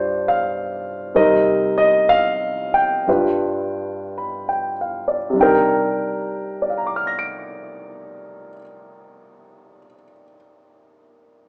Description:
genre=jazz ballad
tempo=48-70 BPM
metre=4/4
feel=swing 67% on 8ths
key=C minor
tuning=A4 = 440 Hz
part: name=warm grand piano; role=solo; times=0.0-11.5 s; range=G2 to D7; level=-20 LUFS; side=equal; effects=none
room=wet recital hall reverb, RT60 1.3 s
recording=recorded in a church or concert hall, small speaker sound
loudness=-20 LUFS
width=mono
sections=0.0-5.4 A section; 5.4-10.4 B section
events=slowing down 0.0-5.4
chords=0.0 G5; 1.1 Cm7; 3.1 G7; 5.4 Cm9

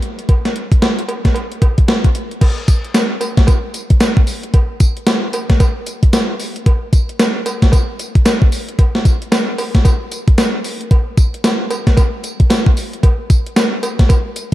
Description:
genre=R&B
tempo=113 BPM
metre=4/4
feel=swing 62% on 16ths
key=none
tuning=none
part: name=gated 80s digital drum machine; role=drums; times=0.0-14.5 s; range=crash cymbal, hi-hat, kick drum, snare drum, tambourine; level=-12 LUFS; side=equal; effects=gated reverb, gated reverb snare, overdrive
part: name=cowbell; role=percussion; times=0.3-14.2 s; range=none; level=-26 LUFS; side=right 2 dB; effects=none
room=light reverb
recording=dark, warm production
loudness=-12 LUFS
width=side -15 dB against mid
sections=0.0-2.4 A section; 2.4-14.5 B section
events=none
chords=none

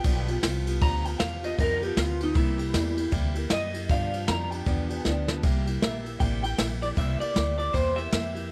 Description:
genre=rockabilly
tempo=156 BPM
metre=4/4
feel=swing 62% on 8ths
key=C mixolydian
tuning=A4 = 440 Hz
part: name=electric guitar through a small old amp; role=melody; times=0.0-8.5 s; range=Eb4 to Bb5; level=-33 LUFS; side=equal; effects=analog chorus, tape echo
part: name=picked acoustic archtop guitar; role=accompaniment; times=0.0-8.5 s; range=G2 to G4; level=-36 LUFS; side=equal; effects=none
part: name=upright bass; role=bass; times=0.0-8.5 s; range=A1 to G2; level=-32 LUFS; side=equal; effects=none
part: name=jazz brush drum kit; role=drums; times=0.0-8.4 s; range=kick drum, ride cymbal, snare drum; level=-31 LUFS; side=equal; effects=none
room=little or no reverb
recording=none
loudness=-27 LUFS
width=mono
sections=0.0-5.4 A section; 5.4-8.5 B section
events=clean electric guitar solo 0.0-5.4; drum fill 5.0-5.4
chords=0.0 G7; 2.4 C7; 3.9 G7; 5.4 C7

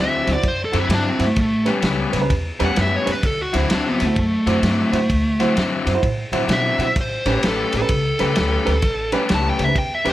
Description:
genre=electric blues shuffle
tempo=129 BPM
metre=4/4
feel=swing 64% on 8ths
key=unclear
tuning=A4 = 440 Hz
part: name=dark smooth lead guitar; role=melody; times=0.0-10.1 s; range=A3 to A5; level=-21 LUFS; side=equal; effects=overdrive
part: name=crunchy overdriven guitar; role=riff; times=0.0-10.1 s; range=A2 to B4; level=-23 LUFS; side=left 4 dB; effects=none
part: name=upright bass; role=bass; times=0.0-10.1 s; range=A1 to B2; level=-24 LUFS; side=equal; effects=none
part: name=dark baby grand piano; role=accompaniment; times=0.2-10.1 s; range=C#4 to C5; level=-26 LUFS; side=right 4 dB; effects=none
part: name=vintage drum kit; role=drums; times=0.3-10.1 s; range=kick drum, ride cymbal, snare drum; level=-23 LUFS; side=equal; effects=none
room=moderate spring reverb, RT60 1.2 s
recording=none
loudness=-17 LUFS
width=side -14 dB against mid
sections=0.0-10.1 A section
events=lead electric guitar solo 0.0-10.1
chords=0.0 D9; 1.4 A9; 3.2 D9; 7.0 A9

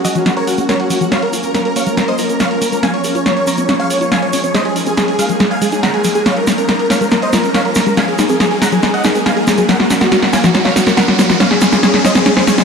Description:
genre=uplifting trance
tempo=140 BPM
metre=4/4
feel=straight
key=Bb minor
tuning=A4 = 440 Hz
part: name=big supersaw lead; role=melody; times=0.0-12.6 s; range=Gb4 to Bb5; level=-17 LUFS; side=equal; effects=tape echo
part: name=tight sequenced synth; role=arpeggios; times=0.0-12.6 s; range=Eb3 to Db5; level=-20 LUFS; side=left 2 dB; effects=chorus, dub echo
part: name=punchy analog drum machine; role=drums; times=0.0-12.6 s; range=hi-hat, snare drum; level=-15 LUFS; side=equal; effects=none
part: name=egg shaker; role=percussion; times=0.0-12.6 s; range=none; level=-28 LUFS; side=right 2 dB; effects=none
part: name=riser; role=sound effects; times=3.2-12.6 s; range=none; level=-26 LUFS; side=equal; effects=none
room=moderate lush hall reverb, RT60 2.1 s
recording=dark, warm production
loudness=-11 LUFS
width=side -6 dB against mid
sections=0.0-12.6 A section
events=build-up 0.0-12.6; drum fill 0.0-12.6; filter sweep on synth arpeggio sound 0.0-12.6; riser 3.2-12.6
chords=0.0 Gb; 1.1 Bbm; 2.8 Db; 4.5 Absus2; 6.3 Bbm; 8.0 Absus2; 9.7 Gb; 11.4 Db

